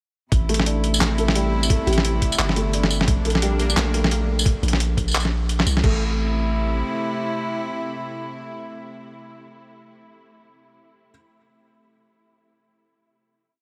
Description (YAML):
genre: half-time drum and bass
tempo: 174 BPM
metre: 4/4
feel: swing 59% on 16ths, half-time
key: A phrygian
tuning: A4 = 440 Hz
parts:
  - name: warm studio cello section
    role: sustained chords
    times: 0.3-9.4 s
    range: C3 to E4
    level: -31 LUFS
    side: equal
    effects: sidechain pumping
  - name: long sustained 808-style bass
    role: bass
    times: 0.3-6.8 s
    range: G1 to C2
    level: -24 LUFS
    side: equal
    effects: none
  - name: boom bap sampler-style drum kit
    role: drums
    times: 0.3-5.9 s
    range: crash cymbal, handclaps, hi-hat, snare drum, tambourine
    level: -26 LUFS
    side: equal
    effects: studio reverb
  - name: electronic kick drum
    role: drums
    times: 0.3-5.9 s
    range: none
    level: -24 LUFS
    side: equal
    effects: studio reverb
  - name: felt-muted upright piano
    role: arpeggios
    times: 0.5-6.0 s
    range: G3 to A4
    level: -31 LUFS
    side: equal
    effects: dub echo
  - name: bell-like FM electric piano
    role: melody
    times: 1.9-2.4 s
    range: G4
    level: -34 LUFS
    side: equal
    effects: none
  - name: pulsing gated texture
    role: texture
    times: 3.1-4.5 s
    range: Bb3 to Bb4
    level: -38 LUFS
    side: equal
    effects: none
room: light reverb, digital ambience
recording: none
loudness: -21 LUFS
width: mono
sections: 0.3-5.8 drop; 5.8-8.6 final chord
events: drop 0.3-5.8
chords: 0.3 Am; 3.1 Bbadd9; 5.8 Am